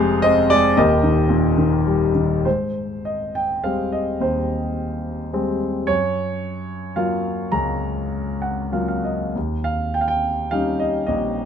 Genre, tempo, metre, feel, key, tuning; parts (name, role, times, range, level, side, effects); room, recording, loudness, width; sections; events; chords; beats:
classical, lyrical solo piano; 96-115 BPM; 3/4; rubato; Ab major; A4 = 440 Hz
warm grand piano; solo; 0.0-11.5 s; Eb1 to Bb5; -18 LUFS; equal
light reverb; close, detailed microphones; -18 LUFS; side -8 dB against mid
0.0-2.5 A section; 2.5-11.5 B section
grand piano fill 8.1-9.4
0.0 Fm; 0.8 Eb; 2.5 Abmaj7; 5.9 Gbmaj7; 9.4 Eb7
0.24 | 0.77 1.30 1.87 | 2.46 3.06 3.64 | 4.21 4.77 5.34 | 5.88 6.42 6.98 | 7.53 8.12 8.73 | 9.36 9.96 10.52 | 11.08